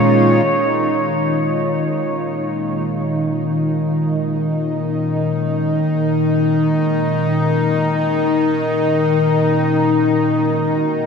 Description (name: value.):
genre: ambient.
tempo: free time.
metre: none.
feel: none.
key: unclear.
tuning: A4 = 440 Hz.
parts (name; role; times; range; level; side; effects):
evolving wavetable pad; sustained chords; 0.0-11.1 s; Bb2 to Gb4; -22 LUFS; equal; chorus, built-in reverb.
bowed-like drone; drone; 0.0-11.1 s; Eb3 to Eb4; -17 LUFS; left 1 dB; built-in reverb.
drifting glass-harmonics texture; texture; 0.0-0.5 s; Db5; -22 LUFS; equal; chorus, built-in reverb.
room: wet huge ambient reverb, RT60 8.9 s.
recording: none.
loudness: -15 LUFS.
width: side -6 dB against mid.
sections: 0.5-11.1 A section.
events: fade-in on ambient pad 0.5-11.1.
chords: 0.0 Bbm7; 7.5 Ebm7.